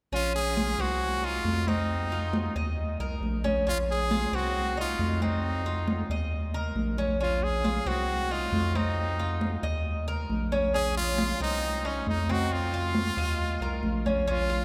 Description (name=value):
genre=latin, Cuban son and guajira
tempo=136 BPM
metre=4/4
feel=straight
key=Bb minor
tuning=A4 = 441 Hz
part: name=brilliant trumpet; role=melody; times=0.1-14.6 s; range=Db4 to Ab4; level=-33 LUFS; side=equal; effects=none
part: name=Cuban tres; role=arpeggios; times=0.1-14.6 s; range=C4 to Eb5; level=-35 LUFS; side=equal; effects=none
part: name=round analog bass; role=bass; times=0.1-14.6 s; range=Bb1 to F2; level=-33 LUFS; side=equal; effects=none
part: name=congas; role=percussion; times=0.1-14.6 s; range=none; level=-36 LUFS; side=equal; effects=none
room=wet cathedral reverb, RT60 5.0 s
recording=recorded in a church or concert hall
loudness=-28 LUFS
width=mono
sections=0.1-14.3 A section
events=none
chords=0.1 Bbm7; 1.0 Cmadd11; 1.9 F5; 2.8 Eb5; 3.7 Bbm7; 4.6 Cmadd11; 5.4 F5; 6.3 Eb5; 7.2 Bbm7; 8.1 Cmadd11; 9.0 F5; 9.9 Eb5; 10.7 Bbm; 11.6 Cmadd11; 12.5 F5; 13.4 Eb5